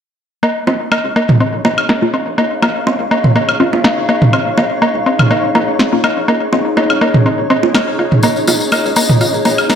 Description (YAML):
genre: minimal techno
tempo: 123 BPM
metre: 4/4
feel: swing 53% on 16ths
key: Bb minor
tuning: A4 = 440 Hz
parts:
  - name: mallet-like synth pluck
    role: riff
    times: 0.4-9.7 s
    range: Bb3 to F4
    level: -17 LUFS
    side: equal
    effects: chorus, tape echo
  - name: electronic woodblock, bongos and toms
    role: percussion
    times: 0.4-9.8 s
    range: none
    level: -14 LUFS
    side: right 1 dB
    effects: none
  - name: flickering grainy texture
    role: texture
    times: 1.0-9.8 s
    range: Db4 to Db5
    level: -26 LUFS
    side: left 1 dB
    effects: built-in reverb
  - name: warbly tape-like pad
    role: texture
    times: 1.0-9.8 s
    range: Eb4 to F5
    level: -19 LUFS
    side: left 1 dB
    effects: chorus, built-in reverb
  - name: rubbery square bass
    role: bass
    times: 0.7-9.8 s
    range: F1 to Db2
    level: -31 LUFS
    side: equal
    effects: none
  - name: electronic snare drum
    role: drums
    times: 1.9-9.8 s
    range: none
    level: -17 LUFS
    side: equal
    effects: overdrive, low-pass filter on snare
  - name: wavetable chord stab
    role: stabs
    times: 2.0-7.7 s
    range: Bb3 to F4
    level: -20 LUFS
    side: right 1 dB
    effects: tape echo
  - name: tambourine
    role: percussion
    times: 8.2-9.8 s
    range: none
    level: -19 LUFS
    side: left 3 dB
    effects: none
room: moderate lush hall reverb, RT60 1.8 s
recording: none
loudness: -11 LUFS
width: side -8 dB against mid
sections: 0.4-9.8 A section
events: none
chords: 0.4 Bbm